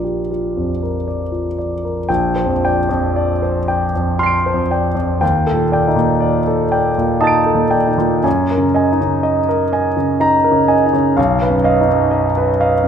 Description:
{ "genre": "classical, impressionist solo piano", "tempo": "56-64 BPM", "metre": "3/4", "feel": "rubato", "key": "unclear", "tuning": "A4 = 440 Hz", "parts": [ { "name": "clear concert grand piano", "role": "solo", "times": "0.0-12.9 s", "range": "Bb1 to D7", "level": "-14 LUFS", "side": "equal", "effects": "none" } ], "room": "moderate recital hall reverb, RT60 1.5 s", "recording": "none", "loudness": "-13 LUFS", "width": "side -8 dB against mid", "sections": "0.0-2.1 A section; 2.1-12.9 B section", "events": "none", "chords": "0.0 Bb; 2.1 Bb69; 5.2 Ebmaj7#11; 8.2 Gb69; 11.2 B(#11)", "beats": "0.01 1.04 | 2.08 3.15 4.20 | 5.21 6.23 7.25 | 8.25 9.24 10.21 | 11.17 12.12" }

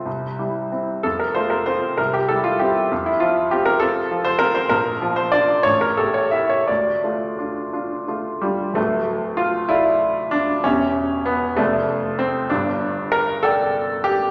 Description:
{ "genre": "classical, romantic character piece for solo piano", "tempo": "55-68 BPM (dotted quarters)", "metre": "6/8", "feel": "rubato", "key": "F major, D minor from 4.7 s", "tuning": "A4 = 439 Hz", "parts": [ { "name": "bright baby grand piano", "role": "solo", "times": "0.0-14.3 s", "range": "D1 to A5", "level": "-20 LUFS", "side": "equal", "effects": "none" } ], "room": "wet recital hall reverb, RT60 1.7 s", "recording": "none", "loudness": "-20 LUFS", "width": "mono", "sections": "0.0-8.8 A section; 8.8-14.3 B section", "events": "none", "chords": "0.1 C; 1.0 F; 2.0 C; 2.9 F5; 4.7 Bb; 5.7 A5; 6.7 Dm; 10.6 C#dim/E; 11.6 Dm/F; 12.5 Gm", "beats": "0.06 | 1.04 1.98 | 2.91 3.81 | 4.71 5.66 | 6.69 7.74 | 8.77 9.70 | 10.64 11.58 | 12.50 13.44" }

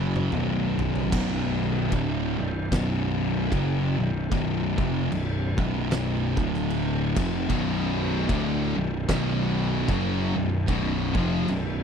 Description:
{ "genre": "stoner and doom metal", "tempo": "75 BPM", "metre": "4/4", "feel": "swing 58% on 8ths", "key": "unclear", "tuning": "A4 = 440 Hz", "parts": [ { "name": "thick fuzz guitar", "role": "riff", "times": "0.0-11.8 s", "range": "B1 to F#3", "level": "-28 LUFS", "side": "left 11 dB", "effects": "distortion" }, { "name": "thick fuzz guitar", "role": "riff", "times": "0.0-11.8 s", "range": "B1 to F#3", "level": "-29 LUFS", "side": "right 10 dB", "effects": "distortion" }, { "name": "fuzz picked electric bass", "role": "bass", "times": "0.0-11.8 s", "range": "B0 to F#1", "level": "-30 LUFS", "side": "equal", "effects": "overdrive" }, { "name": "oversized low-tuned drum kit", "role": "drums", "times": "0.2-11.7 s", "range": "crash cymbal, kick drum, snare drum, toms", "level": "-31 LUFS", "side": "equal", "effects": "none" }, { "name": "tight distorted guitar", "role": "riff", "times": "7.5-11.8 s", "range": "B1 to F#3", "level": "-30 LUFS", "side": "equal", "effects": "distortion" } ], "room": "little or no reverb", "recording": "none", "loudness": "-23 LUFS", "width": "side -7 dB against mid", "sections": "0.0-1.1 A section; 1.1-11.8 B section", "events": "drum fill 0.0-1.1", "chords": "0.3 B5; 1.1 Bm; 6.3 D5; 7.1 Bm", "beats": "0.33 | 1.12 1.92 2.72 3.52 | 4.31 5.11 5.91 6.70 | 7.50 8.29 9.09 9.88 | 10.68 11.48" }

